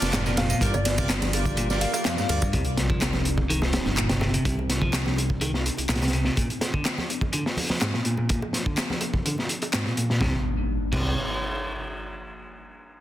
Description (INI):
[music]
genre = breakbeat, breaks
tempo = 125 BPM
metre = 4/4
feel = straight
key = C minor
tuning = A4 = 441 Hz
[part]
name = warbly tape-like pad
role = sustained chords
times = 0.0-10.4 s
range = C3 to D5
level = -36 LUFS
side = left 1 dB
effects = chorus, built-in reverb, sidechain pumping
[part]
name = brilliant horn section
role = stabs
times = 0.0-2.4 s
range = D4 to D5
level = -32 LUFS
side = right 1 dB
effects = tape echo
[part]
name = fat analog bass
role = bass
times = 0.0-6.3, 10.2-11.2 s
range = F1 to D2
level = -27 LUFS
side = equal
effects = none
[part]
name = crunchy breakbeat drum kit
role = drums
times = 0.0-11.0 s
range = crash cymbal, hi-hat, kick drum, snare drum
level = -27 LUFS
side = equal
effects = none
[part]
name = house drum kit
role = drums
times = 0.0-9.8 s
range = handclaps, ride cymbal, tambourine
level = -32 LUFS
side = equal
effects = none
[part]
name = congas and bongos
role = percussion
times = 0.0-10.1 s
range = none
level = -36 LUFS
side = right 2 dB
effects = none
[part]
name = clean electric guitar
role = riff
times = 0.1-11.2 s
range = F2 to F3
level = -30 LUFS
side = equal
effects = tube saturation, vintage 12-bit sampler grit, low-pass filter, tape echo
[part]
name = soft struck synth lead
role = melody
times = 0.4-2.4 s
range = D5 to F5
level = -32 LUFS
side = left 1 dB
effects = chorus, old record sound, tape echo
[part]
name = sub drop and impact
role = sound effects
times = 2.5-4.5, 10.3-12.1 s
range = none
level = -33 LUFS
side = equal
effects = none
[sound]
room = light reverb, small room ambience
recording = dense, heavily limited modern master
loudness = -22 LUFS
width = side -13 dB against mid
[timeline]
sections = 0.0-2.5 A section; 2.5-10.2 B section; 10.2-12.1 C section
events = drop 0.0-2.5; impact 2.5-4.5; filter sweep on clean electric guitar 2.5-10.2; filter sweep on ambient pad 2.5-10.2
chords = 0.0 Bb; 0.6 Gm7; 2.5 Cmadd9; 6.4 Bb; 10.2 N.C.